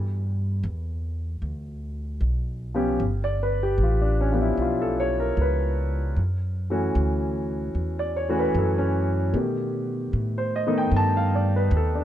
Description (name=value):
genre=jazz ballad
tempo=76 BPM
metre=4/4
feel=swing 69% on 8ths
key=unclear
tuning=A4 = 438 Hz
part: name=upright bass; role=bass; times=0.0-12.0 s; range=G1 to B2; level=-25 LUFS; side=equal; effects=none
part: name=warm grand piano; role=accompaniment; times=2.7-12.0 s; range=D#3 to A5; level=-24 LUFS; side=equal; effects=none
room=little or no reverb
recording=none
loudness=-22 LUFS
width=side -11 dB against mid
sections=0.0-12.0 A section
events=none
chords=0.0 G6; 3.0 G7#11; 6.2 F#m7; 9.3 Baug7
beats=0.64 1.42 2.21 | 3.00 3.79 4.58 5.38 | 6.17 6.96 7.75 8.55 | 9.34 10.13 10.92 11.71